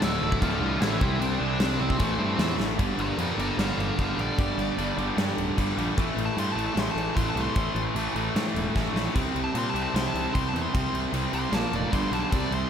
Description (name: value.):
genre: punk rock.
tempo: 151 BPM.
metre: 4/4.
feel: straight.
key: unclear.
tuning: A4 = 439 Hz.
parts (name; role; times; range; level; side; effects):
nasal lead guitar with a parked wah; melody; 0.0-12.7 s; E3 to C6; -32 LUFS; equal; overdrive, tape echo.
cranked stack guitar; riff; 0.0-12.7 s; D2 to C4; -30 LUFS; right 8 dB; overdrive, slapback echo.
tight distorted guitar; riff; 0.0-12.7 s; D2 to C4; -31 LUFS; left 11 dB; distortion, slapback echo.
fuzz picked electric bass; bass; 0.0-12.6 s; D1 to Bb2; -31 LUFS; equal; overdrive.
big rock drum kit; drums; 0.0-12.6 s; crash cymbal, kick drum, snare drum; -29 LUFS; equal; none.
room: light reverb, small room ambience.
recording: none.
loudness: -24 LUFS.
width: side -8 dB against mid.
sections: 0.0-2.8 A section; 2.8-12.7 B section.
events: drum fill 2.6, 8.8-9.1; half time 2.8-12.7; lead electric guitar solo 2.8-12.7.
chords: 0.0 Dm; 1.0 C; 2.0 Am; 2.8 G5; 6.0 Am; 9.1 C5; 11.5 Bb5; 11.9 G5.